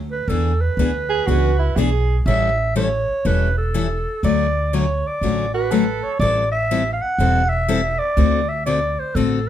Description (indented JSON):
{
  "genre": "acoustic string swing (jazz manouche)",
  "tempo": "122 BPM",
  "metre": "4/4",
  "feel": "swing 65% on 8ths",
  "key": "unclear",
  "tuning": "A4 = 440 Hz",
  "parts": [
    { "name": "upright bass", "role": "bass", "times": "0.0-9.5 s", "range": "E1 to E2", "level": "-21 LUFS", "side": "right 1 dB", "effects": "none" },
    { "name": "growling clarinet", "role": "melody", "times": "0.1-9.5 s", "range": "A4 to F#5", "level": "-22 LUFS", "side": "right 1 dB", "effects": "none" },
    { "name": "picked steel-string acoustic guitar", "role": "accompaniment", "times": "0.3-9.4 s", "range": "D3 to A4", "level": "-22 LUFS", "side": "left 6 dB", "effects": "none" },
    { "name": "dark soprano saxophone", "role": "second line", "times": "1.1-2.2, 5.5-6.2 s", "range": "E4 to A4", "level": "-23 LUFS", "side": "right 8 dB", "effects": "none" }
  ],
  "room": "light reverb",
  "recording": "band playing live in one room",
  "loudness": "-17 LUFS",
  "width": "side -11 dB against mid",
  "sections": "0.0-6.2 A section; 6.2-9.5 B section",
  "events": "none",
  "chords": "0.3 E7; 2.3 A7; 4.2 Dmaj7; 6.2 Am7; 8.2 D7",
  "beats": "| 0.28 0.78 1.27 1.76 | 2.26 2.75 3.24 3.73 | 4.23 4.72 5.21 5.71 | 6.20 6.69 7.18 7.68 | 8.17 8.66 9.15"
}